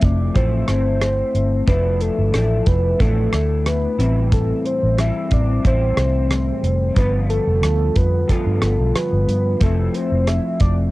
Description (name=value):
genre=indie pop, bedroom pop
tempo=91 BPM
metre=4/4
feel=swing 55% on 16ths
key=D dorian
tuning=A4 = 442 Hz
part: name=soft octave-layered synth lead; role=melody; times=0.0-10.7 s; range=A4 to E5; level=-23 LUFS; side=equal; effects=wide subtle chorus, cassette tape, analog delay
part: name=electric guitar through a small old amp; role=accompaniment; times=0.0-10.9 s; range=G2 to F4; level=-23 LUFS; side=left 2 dB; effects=analog chorus, vibrato effect, cassette tape
part: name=vintage muted fingered electric bass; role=bass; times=0.0-10.9 s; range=F1 to G2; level=-19 LUFS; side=equal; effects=none
part: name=damped 70s drum kit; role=drums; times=0.0-10.8 s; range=hi-hat, kick drum, rim click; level=-19 LUFS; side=equal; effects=cassette tape
room=light reverb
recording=home recording on cassette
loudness=-16 LUFS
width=side -19 dB against mid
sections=0.0-10.9 A section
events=none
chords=0.0 Fmaj7; 1.7 Dmadd9/F; 4.0 Am7; 7.0 G7; 9.6 Fmaj7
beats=0.35 1.01 | 1.68 2.34 3.00 3.66 | 4.32 4.98 5.64 6.30 | 6.96 7.63 8.29 8.95 | 9.61 10.27